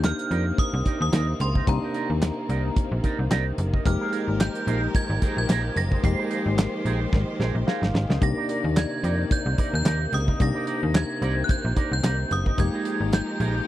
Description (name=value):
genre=early-eighties boogie funk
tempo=110 BPM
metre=4/4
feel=swing 56% on 16ths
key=F dorian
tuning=A4 = 440 Hz
part: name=metallic FM bell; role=melody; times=0.0-13.7 s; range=Bb5 to C7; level=-31 LUFS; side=right 1 dB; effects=chorus, phaser, tape echo
part: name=overdriven tine electric piano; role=accompaniment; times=0.0-13.7 s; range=Ab3 to F5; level=-30 LUFS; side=left 3 dB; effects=auto-pan
part: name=rich studio string section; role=sustained chords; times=0.0-13.7 s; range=C3 to D5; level=-34 LUFS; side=left 2 dB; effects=none
part: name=slap-like FM bass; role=bass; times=0.0-13.6 s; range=F1 to F2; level=-24 LUFS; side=equal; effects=none
part: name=damped 70s drum kit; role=drums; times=0.0-13.5 s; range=handclaps, hi-hat, kick drum, snare drum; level=-23 LUFS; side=equal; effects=none
part: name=electric guitar with an envelope filter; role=riff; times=0.2-13.6 s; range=Eb4 to Eb5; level=-33 LUFS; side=right 10 dB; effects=lush chorus
room=little or no reverb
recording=dry, close 1970s-style studio recording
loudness=-22 LUFS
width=side -14 dB against mid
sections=0.0-13.7 A section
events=drum fill 7.1-8.2; tine electric piano fill 7.4-8.2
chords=0.0 Cm9; 3.9 Fm11; 8.2 Cm9; 12.6 Fm11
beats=0.04 0.58 1.13 | 1.67 2.22 2.76 3.31 | 3.85 4.40 4.95 5.49 | 6.04 6.58 7.13 7.67 | 8.22 8.76 9.31 9.86 | 10.40 10.95 11.49 12.04 | 12.58 13.13